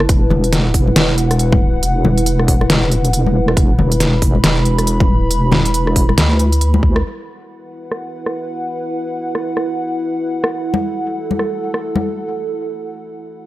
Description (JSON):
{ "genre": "deep dubstep", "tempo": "138 BPM", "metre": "4/4", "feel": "swing 60% on 16ths, half-time", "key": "unclear", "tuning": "A4 = 440 Hz", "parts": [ { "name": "dark analog pad", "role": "sustained chords", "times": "0.0-13.5 s", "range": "E4 to B5", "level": "-21 LUFS", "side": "right 1 dB", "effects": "chorus" }, { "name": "deep soft wobble bass", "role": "bass", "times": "0.0-7.0 s", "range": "E1 to D2", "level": "-15 LUFS", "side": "equal", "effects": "chorus" }, { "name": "dubstep drum kit", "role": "drums", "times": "0.0-11.8 s", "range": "hi-hat, rim click, snare drum", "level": "-17 LUFS", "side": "equal", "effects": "low-pass filter on hats, small room reverb, low-pass filter on snare" }, { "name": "electronic kick drum", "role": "drums", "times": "0.1-6.9 s", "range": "none", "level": "-15 LUFS", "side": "equal", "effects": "small room reverb" }, { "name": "congas", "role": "percussion", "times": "0.3-6.8, 10.7-12.0 s", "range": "none", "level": "-21 LUFS", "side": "left 3 dB", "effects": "dub echo" } ], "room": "little or no reverb", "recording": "dry, gritty hardware recording", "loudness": "-13 LUFS", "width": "side -16 dB against mid", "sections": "0.0-7.0 A section; 7.0-13.5 B section", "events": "band accent 6.9; break 12.3-13.5", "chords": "0.0 E5" }